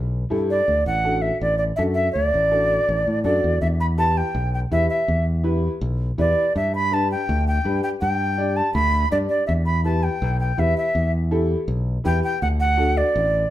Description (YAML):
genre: latin, cumbia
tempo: 164 BPM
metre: 4/4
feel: straight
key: unclear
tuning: A4 = 440 Hz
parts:
  - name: modern bright fingered electric bass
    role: bass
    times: 0.0-13.4 s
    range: A1 to A2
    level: -22 LUFS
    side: equal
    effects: none
  - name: clear upright piano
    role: accompaniment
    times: 0.3-13.0 s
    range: D4 to D5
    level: -26 LUFS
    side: left 1 dB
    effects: none
  - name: jazz flute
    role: melody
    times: 0.5-13.5 s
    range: D5 to B5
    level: -21 LUFS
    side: right 1 dB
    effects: none
room: moderate large studio reverb, RT60 0.9 s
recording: band playing live in one room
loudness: -18 LUFS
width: side -13 dB against mid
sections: 0.0-3.6 A section; 3.6-13.5 B section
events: none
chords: 0.0 Em; 0.7 D; 3.6 Em; 6.6 G; 9.5 Em; 12.4 D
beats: 0.32 | 0.68 1.05 1.42 1.78 | 2.15 2.52 2.88 3.25 | 3.62 3.98 4.35 4.72 | 5.08 5.45 5.82 6.18 | 6.55 6.92 7.29 7.65 | 8.02 8.38 8.75 9.12 | 9.48 9.85 10.22 10.59 | 10.95 11.32 11.69 12.05 | 12.42 12.79 13.15